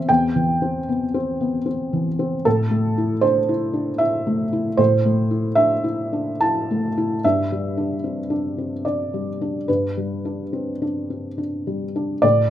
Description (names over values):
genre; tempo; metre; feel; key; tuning
neoclassical minimalist piano; 69-79 BPM; 3/4; rubato; unclear; A4 = 443 Hz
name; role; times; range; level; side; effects
felt-muted upright piano; solo; 0.0-12.5 s; E2 to A5; -19 LUFS; equal; none
room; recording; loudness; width
wet studio ambience, RT60 0.5 s; rough home demo mix; -19 LUFS; side -12 dB against mid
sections
0.0-12.2 A section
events
none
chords
0.0 C/E; 2.5 Am; 7.2 G